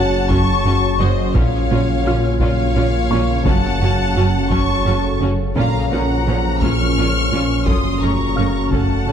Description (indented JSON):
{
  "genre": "cinematic, hybrid orchestral and electronic film score",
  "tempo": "57 BPM (dotted quarters)",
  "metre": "6/8",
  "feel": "straight",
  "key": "Bb harmonic minor",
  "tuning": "A4 = 440 Hz",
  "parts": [
    { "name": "warm symphonic violin section", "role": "melody", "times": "0.0-9.1 s", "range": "Eb5 to F6", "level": "-24 LUFS", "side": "left 3 dB", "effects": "none" },
    { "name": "rich symphonic violin section", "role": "second line", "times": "0.0-9.1 s", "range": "C5 to Db6", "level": "-26 LUFS", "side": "left 3 dB", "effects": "none" },
    { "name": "rich symphonic viola section", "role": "accompaniment", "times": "0.0-9.1 s", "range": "F3 to A4", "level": "-26 LUFS", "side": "right 2 dB", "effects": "none" },
    { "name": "dark trombone section", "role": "sustained chords", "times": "0.0-9.1 s", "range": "Bb2 to Bb3", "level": "-26 LUFS", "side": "right 2 dB", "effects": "none" },
    { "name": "deep dark ambient pad", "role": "sustained chords", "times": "0.0-9.1 s", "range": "F3 to F5", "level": "-25 LUFS", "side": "equal", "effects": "chorus, built-in reverb" },
    { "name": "mellow French horn section", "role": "sustained chords", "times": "0.0-9.1 s", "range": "F3 to Gb4", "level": "-25 LUFS", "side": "left 2 dB", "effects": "none" },
    { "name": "dark studio cello section", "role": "bass", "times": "0.0-9.1 s", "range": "Gb2 to Bb2", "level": "-24 LUFS", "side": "right 2 dB", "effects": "none" },
    { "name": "sub bass with octave", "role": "bass", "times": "0.0-9.1 s", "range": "Gb1 to Bb1", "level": "-22 LUFS", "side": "equal", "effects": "none" },
    { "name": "felt-muted upright piano", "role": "texture", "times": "0.0-9.1 s", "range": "F4 to F6", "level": "-30 LUFS", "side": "left 2 dB", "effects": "ping-pong delay" },
    { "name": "clear symphonic double bass section", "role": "bass", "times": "0.3-9.1 s", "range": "Gb1 to Bb1", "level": "-23 LUFS", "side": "right 3 dB", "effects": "none" },
    { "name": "taiko ensemble", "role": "drums", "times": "0.3-9.1 s", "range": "none", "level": "-23 LUFS", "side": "equal", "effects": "none" }
  ],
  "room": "moderate concert hall reverb, RT60 2.0 s",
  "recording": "dark, warm production",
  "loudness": "-15 LUFS",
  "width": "side -8 dB against mid",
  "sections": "0.0-9.1 A section",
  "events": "none",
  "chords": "0.0 Gbm; 1.4 Bbm; 3.5 Gbm; 5.6 Bbm; 7.7 Gbm",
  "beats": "0.30 | 1.35 2.40 | 3.46 4.51 | 5.56 6.62 | 7.67 8.72"
}